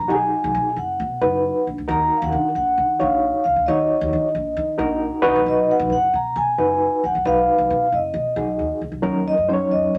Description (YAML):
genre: uptempo 1960s-style soul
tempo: 134 BPM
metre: 4/4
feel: straight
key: Eb minor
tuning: A4 = 439 Hz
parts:
  - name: vibraphone with soft mallets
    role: melody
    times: 0.0-10.0 s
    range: Db5 to Bb5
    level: -22 LUFS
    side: equal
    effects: none
  - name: upright bass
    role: bass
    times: 0.0-10.0 s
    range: F#1 to Eb3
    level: -31 LUFS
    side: equal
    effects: none
  - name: overdriven reed electric piano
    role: accompaniment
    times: 0.1-10.0 s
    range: Gb3 to Db5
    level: -23 LUFS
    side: equal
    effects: fast tremolo
room: moderate studio reverb, RT60 0.6 s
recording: none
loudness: -20 LUFS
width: mono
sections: 0.0-9.0 A section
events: none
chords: 0.0 B; 1.9 Ebm; 5.3 B; 9.0 Ebm7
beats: | 0.10 0.55 1.00 1.45 | 1.89 2.34 2.79 3.24 | 3.69 4.13 4.58 5.03 | 5.47 5.92 6.37 6.81 | 7.26 7.71 8.15 8.60 | 9.05 9.50 9.94